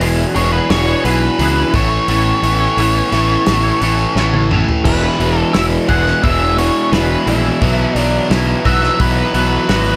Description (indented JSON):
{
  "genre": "quiet-loud alternative rock",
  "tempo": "87 BPM",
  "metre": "4/4",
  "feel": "straight",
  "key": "E major from 4.8 s",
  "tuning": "A4 = 440 Hz",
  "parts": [
    { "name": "twangy electric guitar", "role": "arpeggios", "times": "0.0-10.0 s", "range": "B2 to C#5", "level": "-26 LUFS", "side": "equal", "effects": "ensemble chorus" },
    { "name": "overdriven semi-hollow guitar", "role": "riff", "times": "0.0-10.0 s", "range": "E2 to B3", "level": "-20 LUFS", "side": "equal", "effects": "none" },
    { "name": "fuzz fingered electric bass", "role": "bass", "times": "0.0-9.9 s", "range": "E1 to C#2", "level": "-20 LUFS", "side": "equal", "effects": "overdrive" },
    { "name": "loose indie drum kit", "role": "drums", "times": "0.0-9.9 s", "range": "crash cymbal, hi-hat, kick drum, snare drum, toms", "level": "-23 LUFS", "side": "equal", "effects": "none" },
    { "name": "octave-fuzz lead guitar", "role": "melody", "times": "0.4-10.0 s", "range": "E4 to F#5", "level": "-21 LUFS", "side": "equal", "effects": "distortion" },
    { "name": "crunchy overdriven guitar", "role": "riff", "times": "4.8-10.0 s", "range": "B2 to E4", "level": "-22 LUFS", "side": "equal", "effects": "none" }
  ],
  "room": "little or no reverb",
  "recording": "none",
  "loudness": "-14 LUFS",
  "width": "mono",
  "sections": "0.0-4.8 A section; 4.8-10.0 B section",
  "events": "half time 0.0-4.8; drum fill 4.2-4.8; lead electric guitar solo 4.8-10.0",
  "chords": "0.0 Eadd9; 1.7 Aadd9; 4.8 E; 7.6 Bsus4"
}